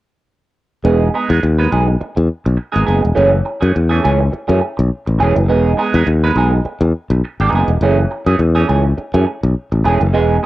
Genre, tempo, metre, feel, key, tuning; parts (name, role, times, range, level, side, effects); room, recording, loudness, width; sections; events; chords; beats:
disco; 103 BPM; 4/4; swing 56% on 16ths; E major; A4 = 440 Hz
semi-hollow electric guitar; accompaniment; 0.8-10.5 s; E3 to B4; -16 LUFS; right 4 dB; wah, cassette tape
modern bright fingered electric bass; bass; 0.8-10.4 s; E1 to F#2; -14 LUFS; left 1 dB
light reverb, digital ambience; home recording on cassette; -12 LUFS; side -16 dB against mid
0.8-10.5 A section
0.8 Emaj7; 3.2 F#m9; 5.5 Emaj7; 7.8 F#m9
| 0.85 1.43 2.01 2.59 | 3.17 3.76 4.34 4.92 | 5.50 6.08 6.66 7.24 | 7.82 8.40 8.98 9.56 | 10.14